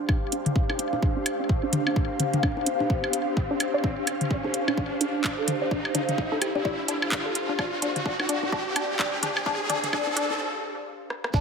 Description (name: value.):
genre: minimal techno.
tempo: 128 BPM.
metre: 4/4.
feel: swing 59% on 16ths.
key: D minor.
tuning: A4 = 440 Hz.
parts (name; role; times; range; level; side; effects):
riser; sound effects; 0.0-10.4 s; none; -32 LUFS; equal; none.
ethereal airy pad; texture; 0.0-10.4 s; D4 to F5; -30 LUFS; equal; ensemble chorus, built-in reverb, phaser, sidechain pumping.
resonant blip pluck; riff; 0.1-11.4 s; D4 to D5; -30 LUFS; left 1 dB; phaser, sidechain pumping, digital delay.
electronic kick drum; drums; 0.1-11.4 s; none; -27 LUFS; equal; none.
electronic woodblock, toms and congas; percussion; 0.1-10.4 s; none; -30 LUFS; left 2 dB; ping-pong delay.
house drum kit; drums; 0.3-11.3 s; handclaps, hi-hat, rim click; -28 LUFS; right 2 dB; none.
thumb-piano-like synth pluck; melody; 6.4-6.6 s; G4; -33 LUFS; left 4 dB; chorus, ping-pong delay.
punchy sub bass; bass; 11.3-11.4 s; D2; -27 LUFS; equal; none.
shekere; percussion; 11.3-11.4 s; none; -36 LUFS; right 4 dB; none.
pulsing gated texture; texture; 11.3-11.4 s; none; barely audible; none; none.
room: moderate digital room reverb, RT60 1.3 s.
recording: high-pass filter.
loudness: -24 LUFS.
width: side -6 dB against mid.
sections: 0.0-11.3 A section.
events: build-up 0.0-11.3; riser 0.0-10.4; filter sweep on synth arpeggio sound 0.0-11.3; filter sweep 0.0-11.3; break 10.4-11.3; drum fill 11.1.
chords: 0.0 Dm7.